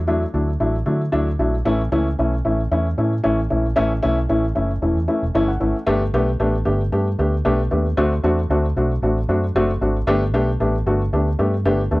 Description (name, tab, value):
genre	uptempo 1960s-style soul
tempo	114 BPM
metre	4/4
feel	straight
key	D major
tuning	A4 = 440 Hz
part	vintage muted fingered electric bass	bass	0.0-12.0 s	E1 to D3	-21 LUFS	equal	none
part	dark upright piano	accompaniment	0.1-12.0 s	E3 to F#5	-19 LUFS	left 1 dB	none
room	light reverb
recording	none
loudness	-17 LUFS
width	side -21 dB against mid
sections	0.0-5.9 A section; 5.9-12.0 B section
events	upright piano fill 5.1-5.9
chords	0.0 Dadd9; 1.7 A; 5.9 Gadd9; 8.0 D7; 10.1 Gadd9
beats	0.07 0.60 1.13 | 1.66 2.19 2.71 3.24 | 3.77 4.30 4.82 5.35 | 5.88 6.40 6.93 7.45 | 7.98 8.50 9.03 9.55 | 10.07 10.60 11.12 11.65